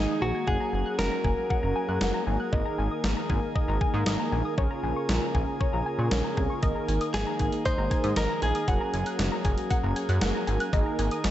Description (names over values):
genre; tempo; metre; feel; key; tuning
synth-pop; 117 BPM; 4/4; straight; unclear; A4 = 440 Hz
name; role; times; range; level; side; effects
direct-recorded clean electric guitar; melody; 0.0-2.2, 7.1-9.2 s; Eb4 to C5; -31 LUFS; equal; warbly pitch drift, tape echo
mellow synth brass; accompaniment; 0.0-11.3 s; Ab3 to Bb4; -33 LUFS; right 1 dB; chorus
chamber organ, principal chorus; sustained chords; 0.0-11.3 s; Db3 to Ab4; -34 LUFS; left 1 dB; none
warbly dusty pluck; arpeggios; 0.0-11.2 s; Db5 to Ab6; -35 LUFS; left 3 dB; chorus, tape echo
chorused synth bass; bass; 0.0-11.3 s; Gb1 to Bb2; -28 LUFS; equal; none
clean 12-bit digital drum machine; drums; 0.5-11.3 s; hi-hat, kick drum, snare drum; -29 LUFS; equal; gated reverb
room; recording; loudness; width
light reverb, digital ambience; nothing above 7.9 kHz; -24 LUFS; side -12 dB against mid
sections
0.0-11.3 A section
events
none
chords
0.5 Gbadd9; 2.5 Absus2; 4.6 Bbm7; 6.6 Absus2; 8.7 Gbadd9; 10.7 Absus2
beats
| 0.47 0.99 1.50 2.01 | 2.53 3.04 3.55 4.07 | 4.58 5.09 5.60 6.12 | 6.63 7.14 7.66 8.17 | 8.68 9.19 9.71 10.22 | 10.73 11.24